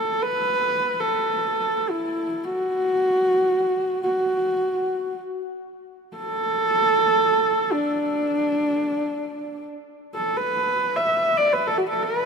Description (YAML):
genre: mongolian traditional, Mongolian folk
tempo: free time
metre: none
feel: none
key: D gong mode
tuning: A4 = 441 Hz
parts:
  - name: dark horsehead fiddle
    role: solo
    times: 0.0-12.3 s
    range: D4 to E5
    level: -20 LUFS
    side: equal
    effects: none
room: moderate huge ambient reverb, RT60 4.1 s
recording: minimal, uncompressed stereo recording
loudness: -20 LUFS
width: side -6 dB against mid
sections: 0.0-9.8 A section; 9.8-12.3 A section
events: none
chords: none